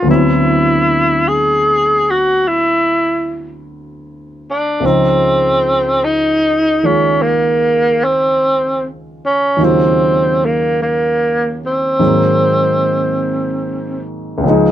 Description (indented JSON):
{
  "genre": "jazz ballad",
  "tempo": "50 BPM",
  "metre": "4/4",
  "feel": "swing 69% on 8ths",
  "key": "Db major",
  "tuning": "A4 = 444 Hz",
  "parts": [
    { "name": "breathy tenor saxophone", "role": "melody", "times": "0.0-14.0 s", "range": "Bb3 to Ab4", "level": "-13 LUFS", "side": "equal", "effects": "none" },
    { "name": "warm grand piano", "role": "accompaniment", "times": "0.0-14.7 s", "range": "Db2 to C5", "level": "-17 LUFS", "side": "equal", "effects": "none" }
  ],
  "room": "light reverb",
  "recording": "close, detailed microphones",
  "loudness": "-12 LUFS",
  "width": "side -11 dB against mid",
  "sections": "0.0-14.4 A section",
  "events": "none",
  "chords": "0.1 D13; 4.8 Dbmaj9; 9.6 Ebm7; 12.0 Ab9",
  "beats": "| 0.08 1.27 2.46 3.64 | 4.83 6.01 7.21 8.40 | 9.59 10.79 12.00 13.22 | 14.44"
}